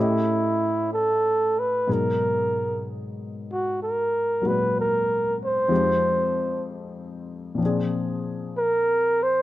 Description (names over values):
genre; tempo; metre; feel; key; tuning
jazz ballad; 63 BPM; 4/4; swing 68% on 8ths; unclear; A4 = 440 Hz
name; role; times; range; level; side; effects
mellow flugelhorn; melody; 0.0-9.4 s; E4 to C5; -22 LUFS; right 1 dB; none
dark baby grand piano; accompaniment; 0.0-9.4 s; F2 to D#5; -27 LUFS; left 2 dB; none
room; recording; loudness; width
light reverb, studio ambience; dry, close 1970s-style studio recording; -21 LUFS; side -15 dB against mid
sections
0.0-9.4 A section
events
none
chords
0.0 A7#11; 1.9 Abm9; 5.7 Fm7; 7.6 Bb7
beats
0.92 | 1.88 2.84 3.79 4.75 | 5.70 6.66 7.61 8.55